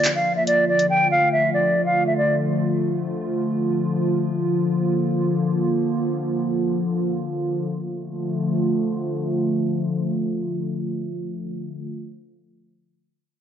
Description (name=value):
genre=hip hop, drill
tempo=free time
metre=none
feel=none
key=D minor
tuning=A4 = 440 Hz
part: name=hollow concert flute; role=melody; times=0.0-2.4 s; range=D5 to G5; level=-18 LUFS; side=equal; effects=low-pass filter
part: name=hollow soft pad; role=sustained chords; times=0.0-11.9 s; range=D3 to F4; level=-22 LUFS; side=equal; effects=chorus, low-pass filter
part: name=drill drum kit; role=drums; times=0.0-0.9 s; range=handclaps, hi-hat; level=-24 LUFS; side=left 1 dB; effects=none
room=moderate lush hall reverb, RT60 1.6 s, digital ambience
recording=nothing above 7.6 kHz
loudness=-20 LUFS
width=side -9 dB against mid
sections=0.0-7.7 A section; 7.7-11.1 B section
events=break 0.0-0.9; filter sweep 0.0-7.7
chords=0.0 Bb; 0.9 Dm; 4.3 Bb; 7.7 Dm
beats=free time